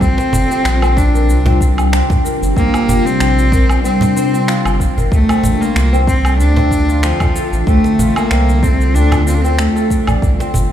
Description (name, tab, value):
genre	organic downtempo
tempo	94 BPM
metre	4/4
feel	swing 54% on 16ths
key	D minor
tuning	A4 = 440 Hz
part	bright cello	melody	0.0-10.1 s	F3 to D4	-17 LUFS	equal	digital delay
part	ethereal airy pad	sustained chords	0.0-10.7 s	C3 to E5	-20 LUFS	left 2 dB	ensemble chorus, built-in reverb, phaser, sidechain pumping
part	kora	arpeggios	0.0-10.7 s	C4 to G5	-21 LUFS	left 1 dB	vintage 12-bit sampler grit, digital delay
part	warm sub bass	bass	0.0-10.7 s	G1 to D2	-14 LUFS	equal	sidechain pumping
part	electronic cabasa, finger snaps and woodblock	drums	0.0-10.7 s	none	-24 LUFS	equal	studio reverb
part	electronic kick drum	drums	0.0-10.4 s	none	-16 LUFS	equal	studio reverb
part	cajon	percussion	0.2-10.7 s	none	-20 LUFS	right 2 dB	none
room	small room reverb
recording	played on a big sound system in a bare room, stone room reverb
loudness	-11 LUFS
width	side -10 dB against mid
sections	0.0-10.7 A section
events	none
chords	0.0 C7sus4; 5.1 Dm7